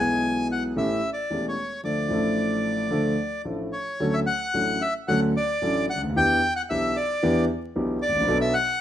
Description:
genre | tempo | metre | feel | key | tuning
tango | 112 BPM | 4/4 | rubato | D harmonic minor, D major from 4.0 s | A4 = 440 Hz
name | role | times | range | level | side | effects
bandoneon | melody | 0.0-8.8 s | C#5 to G#5 | -25 LUFS | left 1 dB | none
warm concert grand piano | accompaniment | 0.0-8.5 s | E1 to A4 | -25 LUFS | equal | none
room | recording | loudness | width
moderate large studio reverb, RT60 0.9 s | vinyl crackle | -22 LUFS | side -11 dB against mid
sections
0.0-4.0 A section; 4.0-8.8 B section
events
none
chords
0.0 E; 0.8 A7; 1.8 Dm; 4.0 Dmaj7; 6.2 Em7; 8.3 Bm7

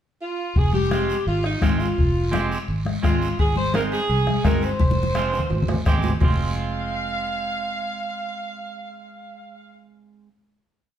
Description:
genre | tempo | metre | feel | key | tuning
latin, cumbia | 170 BPM | 4/4 | straight | F minor | A4 = 440 Hz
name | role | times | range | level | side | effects
warm saxophone section | melody | 0.2-9.8 s | Eb4 to F5 | -26 LUFS | right 1 dB | plate reverb
fingered electric bass | bass | 0.6-10.3 s | F1 to C2 | -24 LUFS | right 1 dB | none
bombo | percussion | 0.6-6.3 s | none | -23 LUFS | left 1 dB | none
congas | percussion | 0.6-6.3 s | none | -27 LUFS | left 4 dB | none
guiro | percussion | 0.6-6.3 s | none | -39 LUFS | right 2 dB | none
clean electric guitar | accompaniment | 0.9-10.3 s | Ab3 to G4 | -30 LUFS | right 5 dB | none
timbales | percussion | 3.4-6.3 s | none | -32 LUFS | right 4 dB | none
room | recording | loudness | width
moderate large studio reverb, RT60 1.0 s | heard from further back in the room | -20 LUFS | side -10 dB against mid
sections
0.0-0.6 pickup bar; 0.6-6.2 A section; 6.2-9.0 final chord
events
drum fill 4.8-6.2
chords
0.0 N.C.; 0.6 Fm; 3.4 Ab; 4.8 Fm

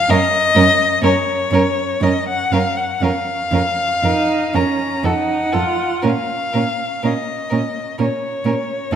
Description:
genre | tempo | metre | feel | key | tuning
classical, slow romantic movement for string quartet | 61 BPM | 3/4 | uneven beats, rubato | Bb minor | A4 = 440 Hz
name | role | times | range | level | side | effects
warm violin | melody | 0.0-9.0 s | Db5 to Bb5 | -18 LUFS | left 4 dB | none
rich violin | second line | 0.1-9.0 s | A4 to Bb4 | -26 LUFS | right 1 dB | none
warm viola | accompaniment | 0.1-9.0 s | Db4 to F4 | -22 LUFS | right 5 dB | none
warm cello | bass | 0.1-9.0 s | F2 to Bb2 | -21 LUFS | right 3 dB | none
room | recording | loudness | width
moderate scoring stage reverb, RT60 1.8 s | dark, warm production | -15 LUFS | side -9 dB against mid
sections
0.0-9.0 A section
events
none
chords
0.1 Gb5; 3.0 Bbm/F; 5.0 N.C.; 6.0 Bbm

